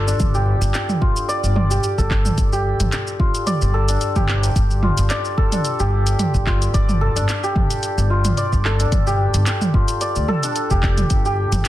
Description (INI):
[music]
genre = organic downtempo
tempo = 110 BPM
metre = 4/4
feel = swing 55% on 16ths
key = unclear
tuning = A4 = 440 Hz
[part]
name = santur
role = arpeggios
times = 0.0-11.7 s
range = D4 to D5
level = -22 LUFS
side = left 1 dB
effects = ping-pong delay
[part]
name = upright bass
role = bass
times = 0.0-11.6 s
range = F1 to D2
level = -20 LUFS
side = equal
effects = sidechain pumping
[part]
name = organic electronic drum kit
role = drums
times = 0.1-11.7 s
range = handclaps, hi-hat, shaker, toms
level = -24 LUFS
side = right 1 dB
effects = none
[part]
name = electronic kick drum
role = drums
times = 0.2-11.2 s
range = none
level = -19 LUFS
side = equal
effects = none
[sound]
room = light reverb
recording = dense, heavily limited modern master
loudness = -16 LUFS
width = side -14 dB against mid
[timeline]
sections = 0.0-11.7 A section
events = none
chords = 0.0 G5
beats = | 0.20 0.74 1.29 1.83 | 2.38 2.92 3.47 4.02 | 4.56 5.11 5.65 6.20 | 6.74 7.29 7.83 8.38 | 8.93 9.47 10.02 10.56 | 11.11 11.65